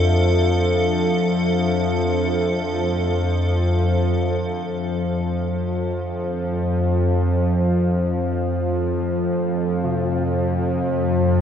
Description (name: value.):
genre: dark ambient drone.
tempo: free time.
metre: none.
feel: none.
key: unclear.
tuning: A4 = 444 Hz.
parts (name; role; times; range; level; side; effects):
deep dark ambient pad; sustained chords; 0.0-11.4 s; D4 to F5; -32 LUFS; right 1 dB; chorus, built-in reverb.
gamelan-type bronze metallophone; arpeggios; 0.0-1.9, 9.8-11.4 s; C3 to F4; -32 LUFS; right 1 dB; none.
bowed-like drone; drone; 0.0-11.4 s; F2 to F3; -19 LUFS; equal; built-in reverb.
icy glass pad; texture; 0.0-4.2 s; A4; -26 LUFS; equal; chorus, built-in reverb.
room: wet huge ambient reverb, RT60 8.4 s.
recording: worn, warbling old tape, cassette tape, warbly pitch drift.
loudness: -19 LUFS.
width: side -8 dB against mid.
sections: 0.0-4.2 A section; 4.2-11.4 B section.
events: fade-out on ambient pad 0.0-4.2.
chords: 0.0 Dm.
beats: free time.